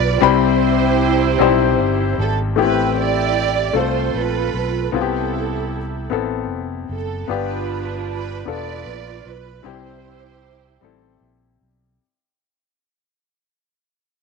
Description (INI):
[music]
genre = slow gospel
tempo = 51 BPM (dotted quarters)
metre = 6/8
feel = straight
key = C major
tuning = A4 = 440 Hz
[part]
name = warm studio string section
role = melody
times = 0.0-11.2 s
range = D4 to D5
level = -22 LUFS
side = right 12 dB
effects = none
[part]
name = clear upright piano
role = accompaniment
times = 0.0-12.0 s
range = G2 to B5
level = -20 LUFS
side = left 14 dB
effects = none
[part]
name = fingered electric bass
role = bass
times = 0.0-12.0 s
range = E1 to C2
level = -24 LUFS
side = right 1 dB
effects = none
[sound]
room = moderate spring reverb, RT60 2.5 s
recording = 1960s-style stereo with parts hard left and right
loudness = -17 LUFS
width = side -4 dB against mid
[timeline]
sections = 0.0-2.6 A section; 2.6-12.0 B section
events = fade-out 2.6-12.0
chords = 0.2 Cmaj7; 2.6 Am7; 3.8 F; 4.9 Cmaj7; 7.3 G7; 9.6 Cmaj7